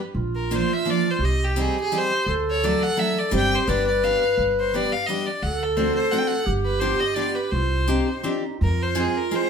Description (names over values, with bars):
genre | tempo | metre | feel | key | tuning
musette waltz | 171 BPM | 3/4 | swing 55% on 8ths | C harmonic minor | A4 = 440 Hz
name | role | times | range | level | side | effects
upright bass | bass | 0.1-9.1 s | G1 to F2 | -25 LUFS | equal | none
warm clarinet | second line | 0.2-9.5 s | Eb4 to B4 | -25 LUFS | right 1 dB | none
bright violin | melody | 0.4-9.5 s | G4 to G5 | -25 LUFS | equal | none
picked steel-string acoustic guitar | accompaniment | 0.5-9.5 s | F3 to Ab4 | -26 LUFS | left 1 dB | none
room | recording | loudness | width
wet studio reverb, RT60 0.7 s | band playing live in one room | -20 LUFS | side -6 dB against mid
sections
0.0-8.6 A section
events
none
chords
0.2 Bb; 1.2 Cm; 2.3 D; 3.3 Gsus4; 3.7 G; 5.4 D7; 6.5 G7; 7.5 Cmadd9; 8.6 Fm